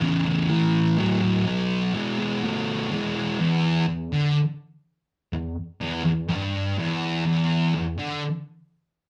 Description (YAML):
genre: rock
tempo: 124 BPM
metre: 4/4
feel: straight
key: unclear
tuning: A4 = 440 Hz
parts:
  - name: thick fuzz guitar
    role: solo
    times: 0.0-8.2 s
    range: E2 to A3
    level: -24 LUFS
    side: equal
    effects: distortion
room: wet small room reverb, RT60 0.6 s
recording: band playing live in one room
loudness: -24 LUFS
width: mono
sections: 0.0-3.4 A section; 3.4-9.1 B section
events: none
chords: 0.0 E5; 0.5 A5; 1.5 B5; 3.4 N.C.